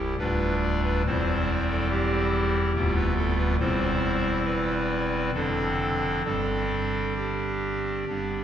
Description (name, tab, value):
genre	classical, chorale-style piece for pipe organ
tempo	65-72 BPM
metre	3/4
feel	rubato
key	C major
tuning	A4 = 440 Hz
part	pipe organ, clarinet reed	solo	0.0-8.4 s	C1 to D5	-23 LUFS	equal	none
room	wet church reverb, RT60 3.7 s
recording	heard from further back in the room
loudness	-23 LUFS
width	side -9 dB against mid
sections	0.0-8.4 A section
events	none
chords	0.2 G7/D; 1.1 C/E; 2.8 G7/D; 3.6 C/E; 5.3 Dm7/F; 6.2 Gsus4